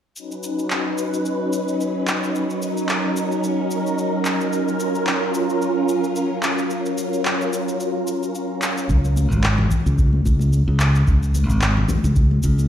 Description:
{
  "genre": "sunset chillout",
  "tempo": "110 BPM",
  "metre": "4/4",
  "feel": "swing 56% on 16ths",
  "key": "unclear",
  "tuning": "A4 = 440 Hz",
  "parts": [
    { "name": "soft string machine", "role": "sustained chords", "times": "0.2-8.9 s", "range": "Gb3 to Cb5", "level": "-21 LUFS", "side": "equal", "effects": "phaser, ensemble chorus, shimmer reverb" },
    { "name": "electronic cabasa and handclaps", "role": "drums", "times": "0.2-12.7 s", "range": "none", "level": "-26 LUFS", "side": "equal", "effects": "none" },
    { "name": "modern bright fingered electric bass", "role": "bass", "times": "8.9-12.7 s", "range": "Ab1 to Db2", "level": "-17 LUFS", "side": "equal", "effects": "none" },
    { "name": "electronic kick drum", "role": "drums", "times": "8.9-12.6 s", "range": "none", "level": "-20 LUFS", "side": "equal", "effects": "overdrive" },
    { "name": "congas", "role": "percussion", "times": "9.2-12.7 s", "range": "none", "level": "-27 LUFS", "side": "left 4 dB", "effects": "none" }
  ],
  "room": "moderate lush hall reverb, RT60 2.2 s",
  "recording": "played on a big sound system in a bare room, stone room reverb",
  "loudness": "-18 LUFS",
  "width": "side -10 dB against mid",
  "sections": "0.2-8.9 A section; 8.9-12.7 B section",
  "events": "none",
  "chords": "0.2 Db9sus4; 4.5 Gbmaj7; 8.9 Db5",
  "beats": "| 0.16 0.70 1.25 1.80 | 2.34 2.89 3.43 3.98 | 4.52 5.07 5.61 6.16 | 6.71 7.25 7.80 8.34 | 8.89 9.43 9.98 10.52 | 11.07 11.61 12.16"
}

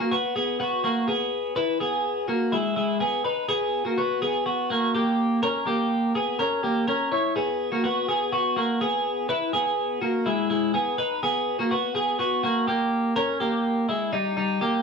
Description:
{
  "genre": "indie pop",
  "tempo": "124 BPM",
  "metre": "4/4",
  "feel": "straight",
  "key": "G# minor",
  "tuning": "A4 = 438 Hz",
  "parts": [
    { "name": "twelve-string electric guitar", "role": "solo", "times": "0.0-14.8 s", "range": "G3 to C#5", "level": "-22 LUFS", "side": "equal", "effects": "none" }
  ],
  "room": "wet large studio reverb, RT60 0.8 s",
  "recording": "band playing live in one room",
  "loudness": "-22 LUFS",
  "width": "side -5 dB against mid",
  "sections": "0.0-14.8 A section",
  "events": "none",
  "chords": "0.0 G#m7; 1.3 G#madd9; 3.5 G#m7; 5.2 A#dim7; 7.4 G#m7; 9.1 G#madd9; 11.2 G#m7; 12.9 D#7",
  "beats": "0.12 0.60 1.08 | 1.56 2.05 2.53 3.01 | 3.50 3.98 4.46 4.94 | 5.43 5.91 6.39 6.88 | 7.36 7.84 8.33 8.81 | 9.29 9.78 10.26 10.74 | 11.23 11.71 12.19 12.68 | 13.16 13.64 14.13 14.61"
}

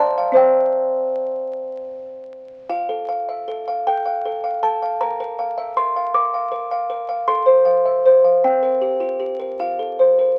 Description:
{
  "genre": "classical, lullaby for music box",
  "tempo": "52 BPM (dotted quarters)",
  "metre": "6/8",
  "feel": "straight",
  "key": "F major",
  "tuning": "A4 = 440 Hz",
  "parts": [
    { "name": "music box", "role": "solo", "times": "0.0-10.4 s", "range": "C4 to D6", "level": "-19 LUFS", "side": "equal", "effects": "none" }
  ],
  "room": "moderate studio reverb, RT60 0.8 s",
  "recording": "very old 78 rpm record, vinyl crackle",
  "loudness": "-19 LUFS",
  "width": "mono",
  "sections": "0.0-10.4 A section",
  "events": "none",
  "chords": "0.4 C; 2.7 F; 5.0 Bb; 7.3 F/A; 8.4 C5; 9.6 F",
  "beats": "| 0.36 1.53 | 2.69 3.86 | 5.01 6.15 | 7.28 8.43 | 9.60"
}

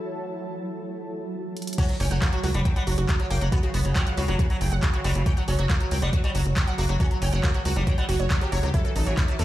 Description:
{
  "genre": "psychedelic trance",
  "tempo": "138 BPM",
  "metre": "4/4",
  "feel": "straight",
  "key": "unclear",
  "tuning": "A4 = 440 Hz",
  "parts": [
    { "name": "bubbling stepped-filter texture", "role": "sustained chords", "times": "0.0-9.4 s", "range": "F#3", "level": "-34 LUFS", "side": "right 3 dB", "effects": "chorus, built-in reverb, sidechain pumping" },
    { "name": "granular cloud pad", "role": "texture", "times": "0.0-0.9 s", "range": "E4 to A5", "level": "-38 LUFS", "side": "equal", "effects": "built-in reverb, sidechain pumping" },
    { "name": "drum and bass drum kit", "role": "drums", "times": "1.6-9.4 s", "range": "crash cymbal, handclaps, hi-hat", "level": "-33 LUFS", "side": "equal", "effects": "overdrive" },
    { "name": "sitar", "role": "melody", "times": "1.8-9.4 s", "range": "C#3 to E4", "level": "-32 LUFS", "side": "left 1 dB", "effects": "phaser, sidechain pumping, ping-pong delay" },
    { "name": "wide unison pluck", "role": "riff", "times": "1.8-9.4 s", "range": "F#4 to B5", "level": "-33 LUFS", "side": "moving between left 3 dB and right 4 dB", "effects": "auto-pan, sidechain pumping, ping-pong delay" },
    { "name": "electronic kick drum", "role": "drums", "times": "1.8-9.3 s", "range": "none", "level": "-22 LUFS", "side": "equal", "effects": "overdrive" },
    { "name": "tight sequencer bass", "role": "bass", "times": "2.0-9.4 s", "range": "F#1 to E2", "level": "-23 LUFS", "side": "equal", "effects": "none" }
  ],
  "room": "little or no reverb",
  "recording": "played on a big sound system in a bare room, large studio reverb",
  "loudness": "-22 LUFS",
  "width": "side -14 dB against mid",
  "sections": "0.0-1.8 A section; 1.8-9.4 B section",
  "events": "drum fill 1.6; drop 1.8-9.4",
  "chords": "0.0 A5; 1.8 F#5; 8.7 A5",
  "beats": "| 0.04 0.48 0.91 1.35 | 1.78 2.22 2.65 3.09 | 3.52 3.96 4.39 4.83 | 5.26 5.70 6.13 6.57 | 7.00 7.43 7.87 8.30 | 8.74 9.17"
}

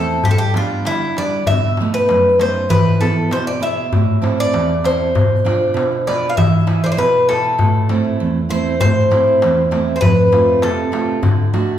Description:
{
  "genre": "greek folk, Greek bouzouki band",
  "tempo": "98 BPM",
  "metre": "2/4",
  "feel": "straight",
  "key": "A minor",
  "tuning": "A4 = 440 Hz",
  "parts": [
    { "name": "Greek bouzouki", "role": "melody", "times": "0.0-11.2 s", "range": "E4 to F5", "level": "-16 LUFS", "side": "left 1 dB", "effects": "none" },
    { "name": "picked steel-string acoustic guitar", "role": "accompaniment", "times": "0.0-11.8 s", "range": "E2 to D5", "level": "-19 LUFS", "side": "right 4 dB", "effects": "none" },
    { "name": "darbuka", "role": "percussion", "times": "0.1-11.7 s", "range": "none", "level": "-19 LUFS", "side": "left 2 dB", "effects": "none" }
  ],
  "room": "wet recital hall reverb, RT60 1.5 s",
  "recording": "recorded in a church or concert hall",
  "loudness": "-13 LUFS",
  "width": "side -10 dB against mid",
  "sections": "0.0-8.8 A section; 8.8-11.8 B section",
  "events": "break 8.2-8.8",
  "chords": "0.2 G; 1.5 B7; 2.7 E; 3.9 Am; 5.1 Bdim; 6.4 E; 7.6 Am; 10.0 F; 11.2 D",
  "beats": "| 0.24 0.86 | 1.47 2.08 | 2.69 3.31 | 3.92 4.53 | 5.14 5.75 | 6.36 6.97 | 7.58 8.19 | 8.80 9.41 | 10.02 10.63 | 11.24"
}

